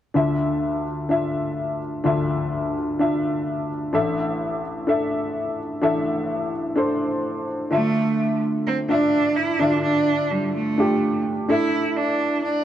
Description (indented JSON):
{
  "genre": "piano-driven pop",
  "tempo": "127 BPM",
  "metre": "4/4",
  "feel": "swing 56% on 16ths",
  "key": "D minor",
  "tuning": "A4 = 442 Hz",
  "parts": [
    { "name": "clear upright piano", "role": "accompaniment", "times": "0.1-12.6 s", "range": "A1 to E5", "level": "-22 LUFS", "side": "left 1 dB", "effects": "none" },
    { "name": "bright cello", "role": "melody", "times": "7.7-12.6 s", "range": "G3 to E4", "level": "-21 LUFS", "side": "right 2 dB", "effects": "none" }
  ],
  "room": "wet plate reverb, RT60 3.4 s",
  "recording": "worn, warbling old tape, cassette tape, warbly pitch drift",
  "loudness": "-20 LUFS",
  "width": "side -11 dB against mid",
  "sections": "0.2-7.7 A section; 7.7-12.6 B section",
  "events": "none",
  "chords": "0.2 Dmadd9; 3.9 Asus4; 7.7 Dmadd9; 11.5 Asus4"
}